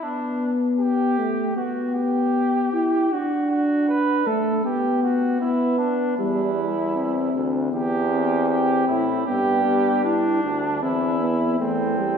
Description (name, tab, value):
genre	classical, imitative canzona for brass ensemble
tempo	78 BPM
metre	4/4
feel	straight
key	C major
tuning	A4 = 441 Hz
part	warm flugelhorn	second line	0.0-12.2 s	C4 to B4	-25 LUFS	right 3 dB	none
part	dark euphonium	accompaniment	0.0-12.2 s	G3 to E4	-22 LUFS	left 1 dB	none
part	bright bass trombone	bass	6.2-12.2 s	D2 to A2	-25 LUFS	right 1 dB	none
room	wet concert hall reverb, RT60 1.9 s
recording	heard from further back in the room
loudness	-19 LUFS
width	side -7 dB against mid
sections	0.0-12.2 A section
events	none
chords	0.0 G/B; 3.1 D; 4.7 G/B; 6.2 C/E; 9.3 G; 10.8 C/E